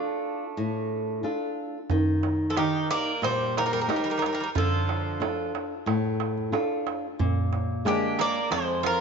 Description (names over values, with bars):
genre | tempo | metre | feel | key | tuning
greek folk, Greek bouzouki band | 91 BPM | 4/4 | straight | D phrygian | A4 = 439 Hz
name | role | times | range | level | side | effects
Greek bouzouki | melody | 0.0-9.0 s | D4 to D5 | -29 LUFS | left 1 dB | none
Greek bouzouki | second line | 0.0-9.0 s | D3 to Bb3 | -32 LUFS | right 9 dB | none
flamenco guitar | accompaniment | 0.0-9.0 s | F2 to Bb4 | -28 LUFS | left 1 dB | none
darbuka | percussion | 1.9-9.0 s | none | -30 LUFS | right 3 dB | none
room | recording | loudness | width
moderate plate reverb, RT60 2.5 s | 1960s-style stereo, nothing above 7.5 kHz | -24 LUFS | side -6 dB against mid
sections
0.0-1.9 A section; 1.9-9.0 B section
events
none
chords
0.0 Dm; 1.9 Eb; 4.6 Dm; 7.2 Bb7